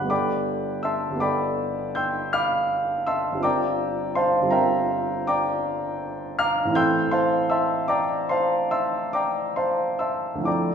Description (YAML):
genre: classical, impressionist solo piano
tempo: 44-56 BPM (dotted quarters)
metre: 9/8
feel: rubato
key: unclear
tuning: A4 = 439 Hz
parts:
  - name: clear baby grand piano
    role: solo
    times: 0.0-10.7 s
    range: G1 to G6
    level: -21 LUFS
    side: equal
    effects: none
room: wet recital hall reverb, RT60 1.4 s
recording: recorded in a church or concert hall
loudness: -21 LUFS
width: side -7 dB against mid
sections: 0.0-10.7 A section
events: none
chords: 0.1 Gadd9; 3.4 C9sus4/G; 6.8 Am7